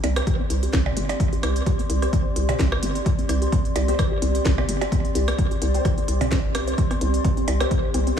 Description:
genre	minimal techno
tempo	129 BPM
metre	4/4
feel	swing 55% on 16ths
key	unclear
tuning	A4 = 440 Hz
part	resonant blip pluck	riff	0.0-8.1 s	C4 to C5	-32 LUFS	left 1 dB	chorus, sidechain pumping, diffuse ambient delay
part	hollow knocking FM bass	bass	0.0-8.1 s	G1 to C2	-23 LUFS	equal	sidechain pumping
part	techno drum kit	drums	0.0-8.2 s	hi-hat, snare drum	-32 LUFS	right 1 dB	overdrive
part	minimal click drum kit	percussion	0.0-7.7 s	claves, percussion blips, rim click, toms	-30 LUFS	right 2 dB	tape echo
part	warbly tape-like pad	texture	0.1-8.2 s	C4 to C6	-29 LUFS	left 1 dB	chorus, built-in reverb, sidechain pumping
part	filtered dub chord stab	stabs	0.2-7.7 s	C4 to C5	-33 LUFS	left 2 dB	none
part	electronic kick drum	drums	0.3-7.8 s	none	-23 LUFS	equal	overdrive
room	light reverb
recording	small room ambience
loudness	-20 LUFS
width	side -8 dB against mid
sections	0.0-8.2 A section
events	none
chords	0.0 C5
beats	0.27 0.73 | 1.20 1.66 2.13 2.59 | 3.06 3.52 3.99 4.46 | 4.92 5.38 5.85 6.32 | 6.78 7.25 7.71 8.18

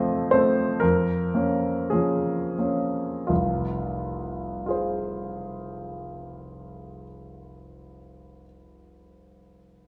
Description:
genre	classical, romantic character piece for solo piano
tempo	42-66 BPM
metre	2/4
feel	rubato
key	F minor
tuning	A4 = 440 Hz
part	clear grand piano	solo	0.0-9.9 s	F1 to Eb5	-26 LUFS	equal	none
room	wet recital hall reverb, RT60 1.5 s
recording	recorded in a church or concert hall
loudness	-25 LUFS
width	mono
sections	0.0-3.3 A section; 3.3-8.8 B section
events	slowing down 0.0-3.3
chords	0.0 F7; 0.8 Bbm/F; 3.3 Fm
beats	| 0.82 1.93 | 3.29 4.67 | 6.04 7.41

